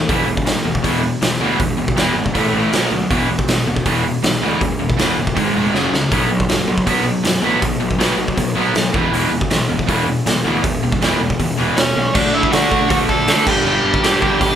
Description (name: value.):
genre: punk rock.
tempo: 159 BPM.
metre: 4/4.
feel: straight.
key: unclear.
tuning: A4 = 436 Hz.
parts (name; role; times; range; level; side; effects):
overdriven electric guitar; riff; 0.0-14.6 s; E2 to D4; -21 LUFS; left 6 dB; none.
fuzz picked electric bass; bass; 0.0-14.5 s; E1 to D3; -24 LUFS; right 1 dB; overdrive.
overdriven electric guitar; riff; 0.1-14.6 s; E2 to D4; -20 LUFS; right 6 dB; none.
raw garage drum kit; drums; 0.1-14.5 s; crash cymbal, hi-hat, kick drum, snare drum; -19 LUFS; equal; none.
dark smooth lead guitar; melody; 11.8-14.6 s; C#4 to A5; -18 LUFS; right 1 dB; overdrive.
room: light reverb.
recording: band playing live in one room.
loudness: -14 LUFS.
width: side -9 dB against mid.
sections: 0.0-12.1 A section; 12.1-14.6 B section.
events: drum fill 5.7-6.1.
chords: 0.1 E5; 2.4 A5; 2.7 B5; 3.1 E5; 5.4 G#5; 5.7 F#5; 6.1 B5; 8.9 E5; 12.1 D; 13.5 G5.